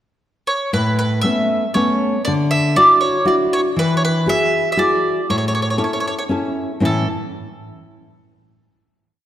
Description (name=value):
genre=italian folk, Italian serenade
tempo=118 BPM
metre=3/4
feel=straight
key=A major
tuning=A4 = 440 Hz
part: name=mandolin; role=melody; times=0.5-7.1 s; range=A4 to E5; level=-18 LUFS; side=right 1 dB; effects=none
part: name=nylon-string guitar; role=accompaniment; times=0.7-7.1 s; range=A2 to A4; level=-18 LUFS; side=left 1 dB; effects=none
room=wet scoring stage reverb, RT60 2.0 s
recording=none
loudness=-15 LUFS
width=side -11 dB against mid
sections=0.0-0.7 pickup bar; 0.7-6.8 A section; 6.8-8.3 final chord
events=none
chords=0.0 N.C.; 0.7 Aadd9; 2.2 Dadd9; 3.8 Eadd9; 5.3 A